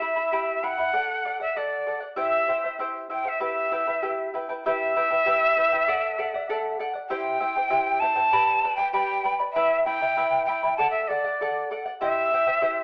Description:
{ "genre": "andean folk", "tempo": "98 BPM", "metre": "2/4", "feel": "straight", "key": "E minor", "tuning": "A4 = 439 Hz", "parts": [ { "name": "breathy quena", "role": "melody", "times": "0.0-12.8 s", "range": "D5 to A5", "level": "-26 LUFS", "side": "equal", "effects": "none" }, { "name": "charango", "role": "accompaniment", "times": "0.0-12.8 s", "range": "E4 to B5", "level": "-30 LUFS", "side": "equal", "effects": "none" } ], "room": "moderate large studio reverb, RT60 1.1 s", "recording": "band playing live in one room, AM radio sound", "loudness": "-25 LUFS", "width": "mono", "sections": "0.0-4.6 A section; 4.6-12.8 A section", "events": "none", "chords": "0.0 Em; 0.9 D; 2.2 C; 3.4 Em; 5.9 D; 7.1 C; 8.3 G; 9.6 Em; 10.8 D; 12.0 C" }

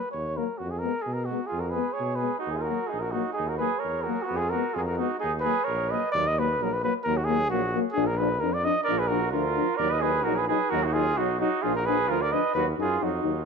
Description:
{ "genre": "balkan folk", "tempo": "131 BPM", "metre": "2/4", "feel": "swing 56% on 16ths", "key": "Eb minor, Eb harmonic minor from 6.1 s", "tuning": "A4 = 440 Hz", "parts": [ { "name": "dark trumpet", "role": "melody", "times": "0.0-13.5 s", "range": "Gb4 to Eb5", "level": "-28 LUFS", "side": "equal", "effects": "none" }, { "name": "warm tuba", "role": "bass", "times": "0.1-13.4 s", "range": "Bb1 to Cb3", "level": "-32 LUFS", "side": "equal", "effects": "none" }, { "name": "mellow euphonium", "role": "accompaniment", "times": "0.4-13.3 s", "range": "Bb3 to Eb4", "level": "-31 LUFS", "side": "left 13 dB", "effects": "none" }, { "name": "mellow trombone", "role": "accompaniment", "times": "0.4-13.3 s", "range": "F3 to Ab3", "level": "-36 LUFS", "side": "right 13 dB", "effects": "none" }, { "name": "warm flugelhorn", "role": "second line", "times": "1.5-6.1, 8.8-13.5 s", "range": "Cb4 to Cb5", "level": "-30 LUFS", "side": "right 10 dB", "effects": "tape echo" } ], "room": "moderate echo chamber reverb, RT60 1.6 s, studio ambience", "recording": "1960s-style stereo with parts hard left and right", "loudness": "-24 LUFS", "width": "side -5 dB against mid", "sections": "0.0-6.1 A section; 6.1-13.5 B section", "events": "none", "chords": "0.0 Ebm; 0.6 Fdim; 2.5 Ebm; 4.3 Fdim; 5.2 Ebm; 8.0 Bb; 9.8 Ebm; 11.6 Bb; 12.5 Ebm" }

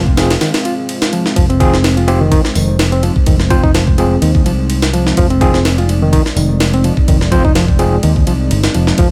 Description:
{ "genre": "breakbeat, breaks", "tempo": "126 BPM", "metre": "4/4", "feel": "swing 55% on 16ths", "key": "F dorian", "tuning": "A4 = 440 Hz", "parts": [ { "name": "dark analog pad", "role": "sustained chords", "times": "0.0-9.1 s", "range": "Ab3 to F5", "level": "-23 LUFS", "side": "equal", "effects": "chorus, sidechain pumping" }, { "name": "picked electric bass", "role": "bass", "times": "0.0-9.1 s", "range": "F1 to Eb2", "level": "-17 LUFS", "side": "equal", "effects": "none" }, { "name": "breakbeat sampler-style drum kit", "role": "drums", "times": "0.1-9.1 s", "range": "hi-hat, kick drum, ride cymbal, snare drum", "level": "-17 LUFS", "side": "equal", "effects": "studio reverb" }, { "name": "overdriven tine electric piano", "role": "stabs", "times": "0.2-8.0 s", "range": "C4 to C5", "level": "-21 LUFS", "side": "equal", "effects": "fast tremolo, delay" }, { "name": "barky reed electric piano", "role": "riff", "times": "0.4-9.1 s", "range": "Eb3 to F4", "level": "-19 LUFS", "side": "equal", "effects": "tube saturation, delay" } ], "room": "little or no reverb", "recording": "none", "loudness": "-12 LUFS", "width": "mono", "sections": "0.0-9.1 A section", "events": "break 0.4-1.4", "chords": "0.0 Fm" }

